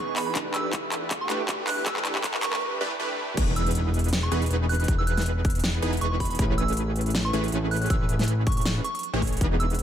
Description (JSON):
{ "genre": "future bass", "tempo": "159 BPM", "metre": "4/4", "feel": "swing 55% on 16ths, half-time", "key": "E major", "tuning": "A4 = 440 Hz", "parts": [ { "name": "soft synth bell", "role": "melody", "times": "0.0-9.7 s", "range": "B5 to F#6", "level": "-32 LUFS", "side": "right 2 dB", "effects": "chorus, sidechain pumping, ping-pong delay" }, { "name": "ethereal airy pad", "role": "sustained chords", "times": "0.0-2.6 s", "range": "E3 to A4", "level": "-42 LUFS", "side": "left 1 dB", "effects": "none" }, { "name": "supersaw stab", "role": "riff", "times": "0.0-9.8 s", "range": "E3 to C#5", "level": "-30 LUFS", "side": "right 1 dB", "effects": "sidechain pumping" }, { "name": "riser and impact", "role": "sound effects", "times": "0.0-4.9 s", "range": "none", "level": "-35 LUFS", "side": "equal", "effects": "none" }, { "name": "big-room dance drum kit", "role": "drums", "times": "0.2-9.8 s", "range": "crash cymbal, handclaps, hi-hat, snare drum", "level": "-30 LUFS", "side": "equal", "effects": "high-pass filter on hats, high-pass filter on snare, high-pass filter on cymbals" }, { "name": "electronic kick drum", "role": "drums", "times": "0.4-9.5 s", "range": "none", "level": "-26 LUFS", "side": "equal", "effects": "none" }, { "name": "fat analog bass", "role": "bass", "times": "3.4-9.8 s", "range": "E1 to A1", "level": "-26 LUFS", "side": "equal", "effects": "sidechain pumping" } ], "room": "light reverb", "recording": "high-pass filter", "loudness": "-23 LUFS", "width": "side -10 dB against mid", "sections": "0.0-3.4 A section; 3.4-9.8 B section", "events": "build-up 0.0-3.4; drum fill 0.0-2.6; riser 0.0-2.6; filter sweep on supersaw synth 0.0-3.4; break 2.6-3.4; drop 3.4-9.8; impact 3.4-4.9", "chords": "0.4 G69; 3.4 Emaj7; 6.4 Amaj9", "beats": "| 0.35 0.73 1.11 1.49 | 1.86 2.24 2.62 3.00 | 3.37 3.75 4.13 4.50 | 4.88 5.26 5.64 6.01 | 6.39 6.77 7.15 7.52 | 7.90 8.28 8.66 9.03 | 9.41 9.79" }